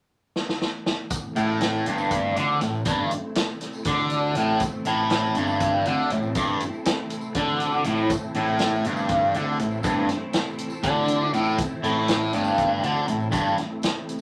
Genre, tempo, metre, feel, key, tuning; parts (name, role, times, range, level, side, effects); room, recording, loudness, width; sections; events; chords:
psychedelic rock; 241 BPM (eighths); 7/8; straight; A minor; A4 = 439 Hz
vintage drum kit; drums; 0.4-14.2 s; hi-hat, kick drum, snare drum; -30 LUFS; equal
string machine, cellos; sustained chords; 1.1-14.2 s; A3 to E4; -34 LUFS; equal; phaser, ensemble chorus
tambourine; percussion; 1.1-14.2 s; -49 LUFS; equal
fuzz guitar; riff; 1.4-13.6 s; G2 to D3; -25 LUFS; equal; distortion, phaser
fuzz fingered electric bass; bass; 1.4-13.6 s; G1 to D2; -37 LUFS; equal; overdrive
wet studio ambience, RT60 0.5 s; -24 LUFS; mono
0.0-1.1 A section; 1.1-14.2 B section
drum fill 0.4-1.1
0.0 N.C.; 1.1 Am